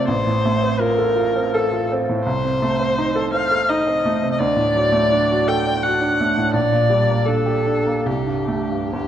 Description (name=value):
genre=classical, romantic duo for viola and grand piano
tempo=83 BPM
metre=3/4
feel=rubato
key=unclear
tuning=A4 = 441 Hz
part: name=warm viola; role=melody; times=0.0-9.1 s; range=G4 to G5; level=-20 LUFS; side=left 2 dB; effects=none
part: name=bright baby grand piano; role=accompaniment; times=0.0-9.1 s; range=A1 to D5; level=-20 LUFS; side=right 2 dB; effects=none
room=wet scoring stage reverb, RT60 2.1 s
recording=nothing above 10.3 kHz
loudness=-16 LUFS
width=side -10 dB against mid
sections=0.0-9.1 A section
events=none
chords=0.1 F/A; 2.3 Adim/C; 4.4 D; 6.5 Gm/Bb; 8.1 Am7/C